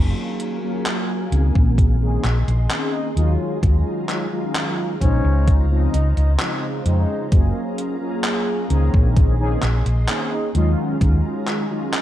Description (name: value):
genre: vaporwave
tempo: 65 BPM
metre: 4/4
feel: straight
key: unclear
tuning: A4 = 440 Hz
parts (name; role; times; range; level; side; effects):
- mellow synth brass; accompaniment; 0.0-12.0 s; Db3 to C5; -24 LUFS; equal; lush chorus, tape echo
- soft string machine; sustained chords; 0.0-12.0 s; Gb3 to C6; -34 LUFS; equal; ensemble chorus
- hollow-body short-scale fingered electric bass; bass; 0.0-11.2 s; Gb1 to F2; -18 LUFS; equal; none
- gated 80s digital drum machine; drums; 0.4-12.0 s; handclaps, hi-hat; -27 LUFS; equal; gated reverb, overdrive
- electronic kick drum; drums; 1.6-11.2 s; none; -16 LUFS; equal; overdrive
- warm flugelhorn; melody; 2.9-10.7 s; Db4 to Eb4; -32 LUFS; equal; tape echo
room: light reverb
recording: dark, warm production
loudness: -17 LUFS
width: side -12 dB against mid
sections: 0.0-12.0 A section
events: none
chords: 0.0 Gbmaj9; 1.8 Bbm11; 3.2 Ebm11; 5.5 Dbmaj9; 7.3 Gbmaj9; 9.2 Bbm11; 10.6 Ebm11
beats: 0.86 1.78 2.71 | 3.63 4.55 5.48 6.40 | 7.32 8.25 9.17 10.09 | 11.02 11.94